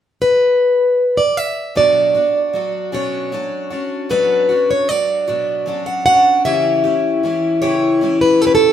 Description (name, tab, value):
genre	folk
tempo	51 BPM (dotted quarters)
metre	6/8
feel	straight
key	B minor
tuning	A4 = 440 Hz
part	picked plugged-in steel-string acoustic guitar	melody	0.2-8.7 s	A4 to F#5	-14 LUFS	right 1 dB	none
part	picked twelve-string acoustic guitar	accompaniment	1.8-8.7 s	B2 to G4	-19 LUFS	left 3 dB	none
room	wet studio reverb, RT60 0.8 s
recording	band playing live in one room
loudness	-14 LUFS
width	side -10 dB against mid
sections	0.0-1.8 A section; 1.8-8.7 B section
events	none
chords	0.0 N.C.; 1.8 Bmadd9; 6.4 C#dim